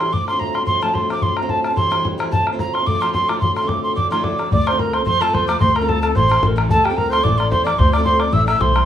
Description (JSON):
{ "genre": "celtic folk, Celtic reel", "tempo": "219 BPM", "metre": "4/4", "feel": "swing 54% on 8ths", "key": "D minor", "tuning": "A4 = 439 Hz", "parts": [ { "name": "mellow hollow tin whistle", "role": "melody", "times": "0.0-8.9 s", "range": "G5 to E6", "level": "-18 LUFS", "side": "right 1 dB", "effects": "none" }, { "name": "picked steel-string acoustic guitar", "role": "accompaniment", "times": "0.0-8.9 s", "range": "A2 to C5", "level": "-25 LUFS", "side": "right 3 dB", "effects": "none" }, { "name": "pedal harmonium", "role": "drone", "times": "0.0-4.5 s", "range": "D2 to A2", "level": "-28 LUFS", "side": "left 5 dB", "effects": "none" }, { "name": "bodhran", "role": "percussion", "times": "0.0-8.8 s", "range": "none", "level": "-22 LUFS", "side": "left 3 dB", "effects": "none" }, { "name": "wooden flute", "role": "second line", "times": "4.5-8.9 s", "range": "G4 to E5", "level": "-24 LUFS", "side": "left 2 dB", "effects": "none" }, { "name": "upright bass", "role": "bass", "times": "4.5-8.9 s", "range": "A1 to F2", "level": "-19 LUFS", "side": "left 1 dB", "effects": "none" } ], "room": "light reverb", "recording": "rough home demo mix, studio reverb", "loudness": "-15 LUFS", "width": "side -10 dB against mid", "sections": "0.0-4.5 A section; 4.5-8.9 A section", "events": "none", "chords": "0.1 Dm7; 1.8 C; 2.3 Dm7; 4.0 Dmadd9; 4.5 Dm7; 5.1 F; 5.6 Dm7; 6.2 Am; 6.7 Dm7; 7.2 Am; 7.8 Dm7; 8.3 Am" }